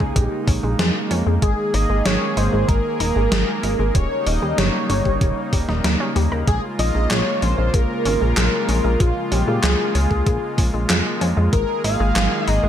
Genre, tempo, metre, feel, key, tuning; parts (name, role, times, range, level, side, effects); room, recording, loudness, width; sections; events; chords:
synthwave; 95 BPM; 4/4; straight; Bb dorian; A4 = 440 Hz
wide unison lead; melody; 0.0-12.7 s; F4 to F5; -24 LUFS; equal; wide subtle chorus, cassette tape, tape echo
warm analog pad; sustained chords; 0.0-12.7 s; Db3 to Ab4; -25 LUFS; right 1 dB; chorus, sidechain pumping
analog pluck; arpeggios; 0.0-12.7 s; G3 to Bb4; -29 LUFS; left 3 dB; chorus, ping-pong delay
chorused synth bass; bass; 0.0-12.7 s; Eb1 to Bb2; -20 LUFS; equal; tube saturation
electronic kick drum; drums; 0.0-11.7 s; -20 LUFS; equal; overdrive
gated 80s digital drum machine; drums; 0.2-12.6 s; handclaps, hi-hat, snare drum; -23 LUFS; right 1 dB; gated reverb, gated reverb snare, overdrive
light reverb; -17 LUFS; side -10 dB against mid
0.0-12.7 A section
0.0 Bbm7; 1.4 Absus2; 4.0 Eb7; 6.5 Bbm7; 11.5 Absus2